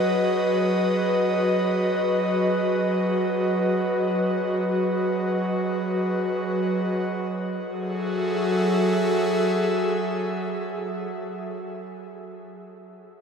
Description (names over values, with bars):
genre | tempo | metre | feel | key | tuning
ambient | free time | none | none | F# dorian | A4 = 440 Hz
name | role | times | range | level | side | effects
airy breathy pad | solo | 0.0-11.6 s | F#3 to E5 | -22 LUFS | equal | chorus, ping-pong delay
room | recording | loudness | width
wet huge ambient reverb, RT60 8.4 s | none | -22 LUFS | side -6 dB against mid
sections
0.0-7.1 A section; 7.1-10.9 B section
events
none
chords
0.0 G#m/F#; 7.1 F#m7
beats
free time